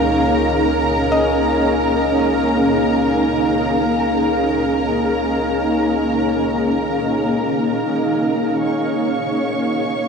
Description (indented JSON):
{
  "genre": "ambient",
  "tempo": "free time",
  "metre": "none",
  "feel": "none",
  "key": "Db major",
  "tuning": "A4 = 441 Hz",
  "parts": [
    { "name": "granular cloud pad", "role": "sustained chords", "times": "0.0-10.1 s", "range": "Bb3 to F5", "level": "-17 LUFS", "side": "equal", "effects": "built-in reverb, shimmer reverb" },
    { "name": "deep rumbling drone", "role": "bass", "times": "0.0-8.5 s", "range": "Db2", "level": "-30 LUFS", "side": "left 1 dB", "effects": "built-in reverb" },
    { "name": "warm studio violin section", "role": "texture", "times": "0.0-10.1 s", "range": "Bb4 to Db6", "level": "-23 LUFS", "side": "equal", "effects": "shimmer reverb" },
    { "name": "soft round pluck", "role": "arpeggios", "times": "1.1-5.1 s", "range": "Eb5", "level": "-26 LUFS", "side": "equal", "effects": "chorus, ping-pong delay, shimmer reverb" }
  ],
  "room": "wet huge ambient reverb, RT60 8.2 s",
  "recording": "dark, warm production",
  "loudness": "-16 LUFS",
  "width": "side -5 dB against mid",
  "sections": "0.0-8.6 A section; 8.6-10.1 B section",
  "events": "fade-out on synth drone 0.0-8.6",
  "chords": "0.0 Db"
}